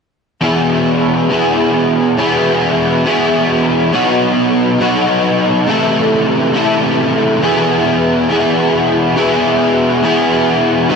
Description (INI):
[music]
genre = rock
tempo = 137 BPM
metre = 4/4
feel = straight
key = E major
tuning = A4 = 439 Hz
[part]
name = overdriven electric guitar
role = riff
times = 0.4-11.0 s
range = E2 to A4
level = -11 LUFS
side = equal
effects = ensemble chorus
[sound]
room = wet lush hall reverb, RT60 2.7 s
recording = dreamy mix soaked in reverb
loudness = -11 LUFS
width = side -5 dB against mid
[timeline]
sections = 0.4-11.0 A section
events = none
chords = 0.4 E; 3.9 B; 5.7 Am/C; 7.4 E